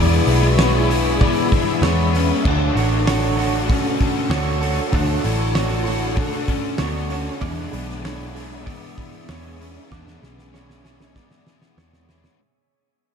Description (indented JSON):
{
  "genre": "rock, shoegaze and dream pop",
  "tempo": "96 BPM",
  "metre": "4/4",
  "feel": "straight",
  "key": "E mixolydian",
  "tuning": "A4 = 441 Hz",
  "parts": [
    { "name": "fuzz lead guitar", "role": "melody", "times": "0.0-12.1 s", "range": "B3 to F#4", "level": "-26 LUFS", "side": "right 1 dB", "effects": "distortion, analog delay" },
    { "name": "soft additive organ-like pad", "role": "sustained chords", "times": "0.0-12.4 s", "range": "G#4 to E6", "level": "-29 LUFS", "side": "right 2 dB", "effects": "ensemble chorus, built-in reverb" },
    { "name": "direct-recorded clean electric guitar", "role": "arpeggios", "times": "0.0-12.4 s", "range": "C#5 to D6", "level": "-32 LUFS", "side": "right 12 dB", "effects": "wide subtle chorus, analog delay" },
    { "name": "overdriven electric guitar", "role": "riff", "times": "0.0-12.4 s", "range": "E2 to B4", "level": "-25 LUFS", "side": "left 14 dB", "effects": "analog chorus" },
    { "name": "vintage muted picked electric bass", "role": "bass", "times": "0.0-12.3 s", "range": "A1 to E2", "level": "-21 LUFS", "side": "equal", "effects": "none" },
    { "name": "loose indie drum kit", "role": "drums", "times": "0.3-12.4 s", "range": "crash cymbal, hi-hat, kick drum, snare drum", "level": "-23 LUFS", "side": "equal", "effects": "none" },
    { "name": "electric guitar through a small old amp", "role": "riff", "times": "2.4-12.4 s", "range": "D3 to C#5", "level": "-29 LUFS", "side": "right 15 dB", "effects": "reverse reverb" }
  ],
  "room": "studio ambience",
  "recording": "dark, warm production",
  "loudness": "-17 LUFS",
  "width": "side -7 dB against mid",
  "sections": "0.0-12.4 A section",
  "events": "fade-out 0.0-12.4; drum fill 9.9-12.4",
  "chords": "0.0 E7; 2.4 Dmaj7; 7.4 E7"
}